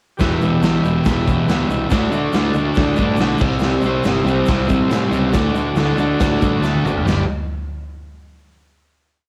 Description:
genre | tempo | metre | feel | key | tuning
garage rock duo or trio | 140 BPM | 4/4 | straight | G major | A4 = 439 Hz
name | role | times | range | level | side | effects
combo organ | sustained chords | 0.2-7.3 s | E4 to A5 | -28 LUFS | equal | cassette tape
fuzz guitar | riff | 0.2-7.2 s | E2 to D4 | -20 LUFS | equal | distortion, cassette tape
growling picked electric bass | bass | 0.2-7.3 s | E1 to A2 | -27 LUFS | equal | overdrive, tube saturation
raw garage drum kit | drums | 0.2-7.2 s | crash cymbal, kick drum, snare drum, toms | -23 LUFS | equal | cassette tape
egg shaker | percussion | 0.2-7.3 s | none | -50 LUFS | equal | none
room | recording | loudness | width
light reverb | home recording on cassette | -18 LUFS | mono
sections
0.2-7.1 pre-chorus; 7.1-8.8 final chord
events
transistor combo organ fill 6.4-7.1; drum fill 6.6-7.1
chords
0.2 Em; 1.9 D; 3.4 C; 5.3 D; 7.1 G

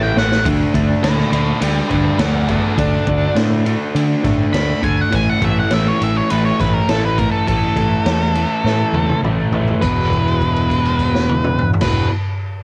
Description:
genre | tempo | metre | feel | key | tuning
garage rock duo or trio | 102 BPM | 4/4 | straight | unclear | A4 = 440 Hz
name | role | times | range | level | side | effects
octave-fuzz lead guitar | melody | 0.0-12.1 s | D4 to B5 | -24 LUFS | equal | distortion, cassette tape
crunchy overdriven guitar | riff | 0.0-12.1 s | E2 to D4 | -22 LUFS | equal | cassette tape
growling fingered electric bass | bass | 0.0-12.1 s | E1 to D3 | -22 LUFS | equal | overdrive
raw garage drum kit | drums | 0.2-12.0 s | crash cymbal, kick drum, ride cymbal, snare drum, toms | -23 LUFS | equal | cassette tape
room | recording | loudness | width
little or no reverb | home recording on cassette | -17 LUFS | mono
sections
0.5-9.8 A section; 9.8-12.2 B section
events
drum fill 0.2, 8.6-9.8; lead electric guitar solo 0.5-9.8; held note 9.8-11.8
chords
0.5 D5; 5.1 A5; 9.8 E5

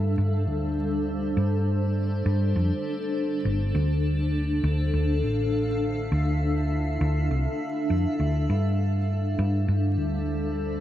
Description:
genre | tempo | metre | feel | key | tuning
ambient dub | 101 BPM | 4/4 | swing 57% on 16ths | unclear | A4 = 442 Hz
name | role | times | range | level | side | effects
granular cloud pad | sustained chords | 0.0-10.8 s | G3 to F5 | -28 LUFS | left 1 dB | built-in reverb
hollow-body short-scale fingered electric bass | bass | 0.0-10.8 s | G1 to G2 | -24 LUFS | equal | tube saturation
room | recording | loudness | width
moderate concert hall reverb, RT60 1.9 s | vinyl crackle | -23 LUFS | side -12 dB against mid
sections
0.0-10.8 A section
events
none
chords
0.0 Gsus4; 3.7 Dm9; 8.5 G9sus4

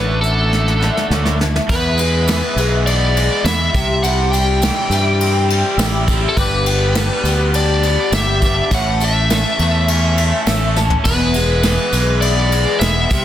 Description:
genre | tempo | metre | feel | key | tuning
folk rock and heartland rock | 102 BPM | 4/4 | straight | unclear | A4 = 440 Hz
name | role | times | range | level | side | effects
biting lead guitar | melody | 0.0-13.2 s | A4 to G5 | -19 LUFS | left 1 dB | overdrive
picked twelve-string acoustic guitar | accompaniment | 0.0-13.2 s | E2 to A4 | -23 LUFS | left 4 dB | ensemble chorus
crunchy overdriven guitar | riff | 0.0-13.2 s | E2 to A4 | -23 LUFS | right 3 dB | none
fingered electric bass | bass | 0.0-13.2 s | E1 to G2 | -18 LUFS | equal | none
soft brush drum kit | drums | 0.2-13.2 s | crash cymbal, hi-hat, kick drum, ride cymbal, snare drum, toms | -20 LUFS | equal | none
tambourine | percussion | 1.7-13.2 s | none | -31 LUFS | right 9 dB | none
room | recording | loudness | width
light reverb | dense, heavily limited modern master | -13 LUFS | side -11 dB against mid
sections
0.0-1.7 A section; 1.7-13.2 B section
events
drum fill 0.5-1.7, 10.8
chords
0.0 Dadd9; 1.7 E; 3.7 C; 6.4 G; 8.7 A; 11.1 E

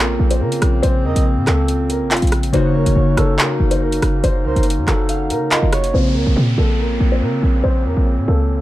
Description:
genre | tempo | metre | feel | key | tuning
hip hop, drill | 141 BPM | 4/4 | half-time | Bb harmonic minor | A4 = 439 Hz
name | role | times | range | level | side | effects
dark concert grand piano | melody | 0.0-8.6 s | F4 to C5 | -23 LUFS | equal | low-pass filter
glassy digital keys | accompaniment | 0.0-8.6 s | Db3 to Gb5 | -22 LUFS | left 2 dB | chorus, low-pass filter
clear woodwind section | sustained chords | 0.0-8.6 s | Db3 to Eb4 | -25 LUFS | right 1 dB | low-pass filter
short 808-style bass | bass | 0.0-8.6 s | F1 to Db3 | -17 LUFS | equal | none
drill drum kit | drums | 0.3-5.9 s | handclaps, hi-hat, rim click | -21 LUFS | right 1 dB | none
breathy flute-like synth lead | second line | 1.0-5.9 s | Bb4 to Eb5 | -27 LUFS | right 2 dB | chorus, ping-pong delay
downlifter | sound effects | 5.9-8.6 s | none | -30 LUFS | equal | none
room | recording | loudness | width
little or no reverb | dark, warm production | -14 LUFS | side -15 dB against mid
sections
0.0-5.9 A section; 5.9-8.6 B section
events
filter sweep 5.9-8.6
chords
0.0 Bbmadd9; 2.5 Gb6; 5.9 Bbmadd9

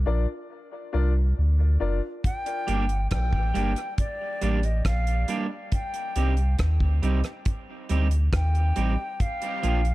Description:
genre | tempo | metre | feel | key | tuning
dub reggae | 69 BPM | 4/4 | straight | Bb major | A4 = 441 Hz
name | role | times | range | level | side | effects
warm sub bass | bass | 0.0-9.9 s | Gb1 to Eb2 | -22 LUFS | equal | none
warm upright piano | stabs | 0.1-2.0 s | D4 to D5 | -33 LUFS | left 5 dB | dub echo
reedy concert flute | melody | 2.2-9.9 s | D5 to G5 | -32 LUFS | left 1 dB | dub echo
damped 70s drum kit | drums | 2.2-9.9 s | hi-hat, kick drum, rim click | -28 LUFS | equal | none
electric guitar at the edge of break-up | accompaniment | 2.7-9.8 s | F3 to G4 | -31 LUFS | right 4 dB | dub echo
room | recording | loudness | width
studio ambience | echo-heavy mix | -23 LUFS | side -18 dB against mid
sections
0.0-9.9 A section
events
break 0.0-2.2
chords
0.0 Bb; 2.2 Gm; 5.7 Cm; 9.2 Bb

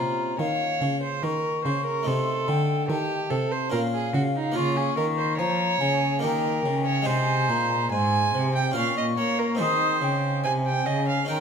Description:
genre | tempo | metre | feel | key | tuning
classical, baroque-style sonata movement with continuo | 72 BPM | 3/4 | rubato | Ab major from 4.6 s | A4 = 441 Hz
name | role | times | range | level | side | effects
mellow hollow silver concert flute | melody | 0.0-11.4 s | F5 to Eb6 | -29 LUFS | left 6 dB | none
rich violin | second line | 0.0-11.4 s | Eb4 to Ab5 | -27 LUFS | right 5 dB | none
harpsichord | accompaniment | 0.0-11.4 s | Ab2 to Bb4 | -30 LUFS | left 2 dB | none
rich cello | bass | 0.0-11.4 s | Ab2 to Bb3 | -27 LUFS | right 1 dB | none
room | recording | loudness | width
moderate recital hall reverb, RT60 1.4 s | none | -22 LUFS | side -6 dB against mid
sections
0.0-11.4 A section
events
none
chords
0.0 Bbm; 2.1 Adim/C; 3.7 Bbm; 4.6 Bbm/Db; 6.2 Eb; 7.1 Ab; 8.8 Bbm; 9.6 Ab

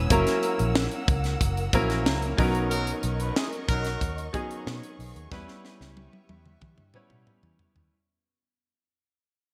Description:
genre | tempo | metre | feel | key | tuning
polished 1980s jazz-funk pop | 92 BPM | 4/4 | straight | unclear | A4 = 438 Hz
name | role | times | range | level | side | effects
bright concert grand piano | accompaniment | 0.0-7.9 s | F#3 to C#5 | -31 LUFS | equal | analog chorus
dark studio string section | sustained chords | 0.0-7.9 s | G4 to E6 | -40 LUFS | equal | none
vintage muted fingered electric bass | bass | 0.0-7.9 s | F#1 to E3 | -32 LUFS | equal | none
tight funk drum kit | drums | 0.1-7.9 s | hi-hat, kick drum, snare drum, toms | -30 LUFS | equal | gated reverb
mellow horn section | second line | 2.7-4.3 s | F#3 to B4 | -35 LUFS | equal | none
room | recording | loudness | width
light reverb, small room ambience | bright 1980s-style digital production | -26 LUFS | mono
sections
0.0-7.9 A section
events
fade-out 0.0-7.9; drum fill 5.3-7.9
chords
0.1 F#7; 2.4 Bmaj9; 5.3 Em6

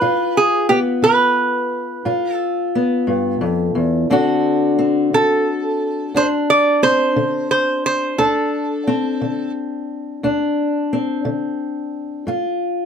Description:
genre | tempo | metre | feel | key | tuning
acoustic country blues, solo or duo | 59 BPM (dotted quarters) | 12/8 | straight | unclear | A4 = 440 Hz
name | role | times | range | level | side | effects
lap resonator guitar | melody | 0.0-9.5 s | G4 to D5 | -17 LUFS | right 2 dB | none
fingerpicked steel-string acoustic guitar | accompaniment | 0.0-12.9 s | D2 to F#4 | -18 LUFS | left 2 dB | none
room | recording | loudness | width
moderate studio reverb, RT60 0.5 s | none | -16 LUFS | side -7 dB against mid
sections
0.0-12.9 A section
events
none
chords
0.0 G7; 4.1 D7; 12.3 G7(no3)

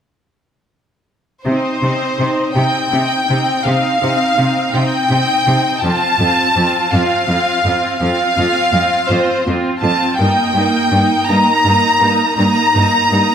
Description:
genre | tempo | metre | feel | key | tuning
cinematic | 55 BPM (dotted quarters) | 6/8 | straight | C dorian | A4 = 442 Hz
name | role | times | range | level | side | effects
rich studio violin section | melody | 1.4-13.3 s | C5 to Bb5 | -14 LUFS | left 1 dB | none
rich symphonic viola section | accompaniment | 1.5-13.3 s | Bb3 to F4 | -19 LUFS | right 2 dB | none
rich symphonic cello section | bass | 1.5-13.2 s | F2 to C3 | -18 LUFS | equal | none
room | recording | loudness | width
moderate scoring stage reverb, RT60 1.6 s | none | -12 LUFS | side -8 dB against mid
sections
1.5-13.3 A section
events
none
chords
1.5 Cm; 5.8 F; 10.2 Eb/G

